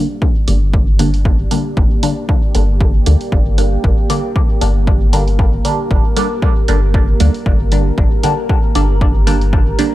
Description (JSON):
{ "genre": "dub techno", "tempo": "116 BPM", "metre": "4/4", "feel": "swing 56% on 16ths", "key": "G minor", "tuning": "A4 = 440 Hz", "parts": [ { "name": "deep dark ambient pad", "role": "sustained chords", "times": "0.1-9.9 s", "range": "Bb3 to D5", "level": "-24 LUFS", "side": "right 1 dB", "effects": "chorus, built-in reverb, sidechain pumping" }, { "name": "filtered dub chord stab", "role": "stabs", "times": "0.0-9.9 s", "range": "D3 to D4", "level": "-19 LUFS", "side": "right 1 dB", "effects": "phaser, sidechain pumping, dub echo" }, { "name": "electronic kick drum", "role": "drums", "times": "0.2-9.6 s", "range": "none", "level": "-14 LUFS", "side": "equal", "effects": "none" }, { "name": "soft dub sub bass", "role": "bass", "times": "0.5-9.7 s", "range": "G1 to D2", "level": "-14 LUFS", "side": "equal", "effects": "transformer saturation, sidechain pumping" }, { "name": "electronic hi-hat", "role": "drums", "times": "0.5-9.9 s", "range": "none", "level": "-25 LUFS", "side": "right 2 dB", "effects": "none" } ], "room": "digital ambience", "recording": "dry, gritty hardware recording, cassette tape", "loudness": "-11 LUFS", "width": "side -15 dB against mid", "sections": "0.0-9.9 A section", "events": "filter sweep on synth stab 0.0-9.9", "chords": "0.0 Gm" }